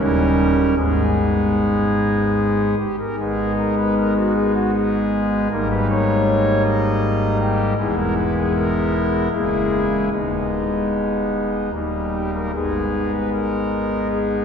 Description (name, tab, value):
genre	classical, chorale-style piece for pipe organ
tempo	73-80 BPM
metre	3/4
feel	rubato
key	G# minor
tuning	A4 = 435 Hz
part	pipe organ, foundations	solo	0.0-14.4 s	C#1 to D#5	-17 LUFS	equal	none
room	wet church reverb, RT60 3.6 s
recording	heard from further back in the room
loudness	-17 LUFS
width	side -7 dB against mid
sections	0.0-3.2 A section; 3.2-14.4 B section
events	none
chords	0.0 D#7; 0.8 G#m; 5.5 D#7/G#; 7.8 E; 9.3 A#m7b5/C#; 10.1 G#m/D#; 11.7 D#; 12.5 G#m